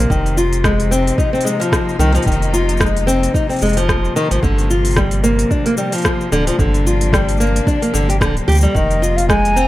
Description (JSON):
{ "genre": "folktronica", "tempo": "111 BPM", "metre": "4/4", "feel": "swing 56% on 16ths", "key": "F dorian", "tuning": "A4 = 440 Hz", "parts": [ { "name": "warm string quartet", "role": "sustained chords", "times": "0.0-9.7 s", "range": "C3 to Eb4", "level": "-23 LUFS", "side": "left 2 dB", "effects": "none" }, { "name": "nylon-string guitar", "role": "arpeggios", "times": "0.0-9.7 s", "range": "D3 to G4", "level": "-17 LUFS", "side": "left 1 dB", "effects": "digital delay" }, { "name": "warm sub bass", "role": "bass", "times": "0.0-9.7 s", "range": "D1 to D2", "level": "-17 LUFS", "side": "equal", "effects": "none" }, { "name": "organic electronic drum kit", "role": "drums", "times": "0.0-9.7 s", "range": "hi-hat, rim click, shaker", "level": "-23 LUFS", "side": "left 1 dB", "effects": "overdrive" }, { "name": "electronic kick drum", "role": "drums", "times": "0.1-9.4 s", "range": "none", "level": "-19 LUFS", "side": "equal", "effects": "overdrive" }, { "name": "backwards swelling texture", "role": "texture", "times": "9.4-9.7 s", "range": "Bb5", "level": "-34 LUFS", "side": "equal", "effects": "none" }, { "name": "wooden flute", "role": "melody", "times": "8.8-9.7 s", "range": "Eb5 to Ab5", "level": "-17 LUFS", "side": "equal", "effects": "none" } ], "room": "light reverb, digital ambience", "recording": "none", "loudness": "-13 LUFS", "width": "side -16 dB against mid", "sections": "0.0-9.7 A section", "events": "none", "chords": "0.1 Fm7; 4.4 Gm7; 8.7 Fm7", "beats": "| 0.10 0.64 1.18 1.72 | 2.26 2.80 3.34 3.88 | 4.42 4.96 5.51 6.05 | 6.59 7.13 7.67 8.21 | 8.75 9.29" }